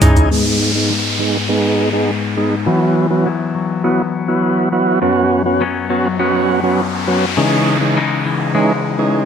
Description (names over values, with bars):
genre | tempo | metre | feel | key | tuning
dancehall | 102 BPM | 4/4 | straight | G# minor | A4 = 440 Hz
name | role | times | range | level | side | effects
tonewheel organ | accompaniment | 0.0-9.3 s | E3 to G#4 | -15 LUFS | right 2 dB | overdrive, slow rotary speaker, low-pass filter
clean electric guitar | arpeggios | 0.0-9.3 s | F#2 to E4 | -19 LUFS | left 6 dB | low-pass filter
downlifter and noise sweep | sound effects | 0.3-9.3 s | none | -22 LUFS | equal | none
room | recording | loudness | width
light reverb, digital ambience | none | -13 LUFS | side -7 dB against mid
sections
0.3-9.3 A section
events
filter sweep 0.3-9.3; noise sweep 5.5-9.3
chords
0.3 G#m; 2.7 Esus2; 5.0 F#sus4; 7.4 C#madd9